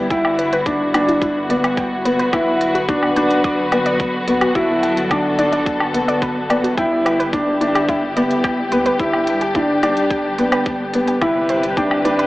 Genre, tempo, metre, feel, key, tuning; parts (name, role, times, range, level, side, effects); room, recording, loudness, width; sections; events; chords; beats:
piano and strings electronica; 108 BPM; 4/4; straight; A4 = 441 Hz
dark studio string section; sustained chords; 0.0-12.3 s; C3 to B4; -21 LUFS; left 1 dB
dark grand piano; riff; 0.0-12.3 s; B3 to E4; -18 LUFS; equal; tape echo
warbly dusty pluck; arpeggios; 0.1-12.3 s; E4 to D6; -24 LUFS; equal; chorus, sidechain pumping, tape echo
warm sub bass; bass; 0.1-12.3 s; G1 to D2; -38 LUFS; equal; sidechain pumping
electronic hi-hat and woodblock; drums; 0.1-12.3 s; -25 LUFS; equal
electronic kick drum; drums; 0.1-11.9 s; -25 LUFS; equal
moderate echo chamber reverb, RT60 1.7 s; AM radio sound; -15 LUFS; side -18 dB against mid
0.0-12.3 A section
0.0 G6; 2.3 Bm/G; 6.8 Em7/G; 11.2 Cmaj7/G
| 0.11 0.66 1.22 1.77 | 2.33 2.88 3.44 4.00 | 4.55 5.11 5.66 6.22 | 6.77 7.33 7.88 8.44 | 8.99 9.55 10.11 10.66 | 11.22 11.77